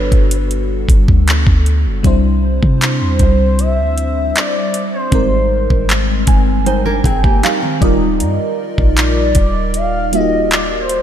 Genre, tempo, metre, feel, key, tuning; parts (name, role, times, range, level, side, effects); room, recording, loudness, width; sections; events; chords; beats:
contemporary R&B; 78 BPM; 4/4; straight; A4 = 439 Hz
gliding portamento lead; melody; 0.0-11.0 s; B4 to F5; -20 LUFS; equal; chorus, diffuse ambient delay
FM electric piano with soft pad layer; accompaniment; 0.0-11.0 s; G3 to Ab5; -18 LUFS; left 1 dB; chorus, phaser
clean 808-style bass; bass; 0.0-11.0 s; Eb1 to C3; -16 LUFS; equal
smooth R&B drum kit; drums; 0.1-11.0 s; handclaps, hi-hat, kick drum; -16 LUFS; equal
nylon-string guitar; arpeggios; 6.7-8.0 s; Eb3 to C5; -21 LUFS; right 3 dB; diffuse ambient delay
light reverb; -12 LUFS; side -10 dB against mid
0.0-11.0 A section
FM electric piano fill 5.9-8.2
0.0 Gmaj9; 2.0 Cadd9; 5.1 Abmaj9; 7.8 Ebmaj9
0.51 1.28 | 2.04 2.81 3.58 4.35 | 5.12 5.89 6.66 7.43 | 8.20 8.97 9.74 10.51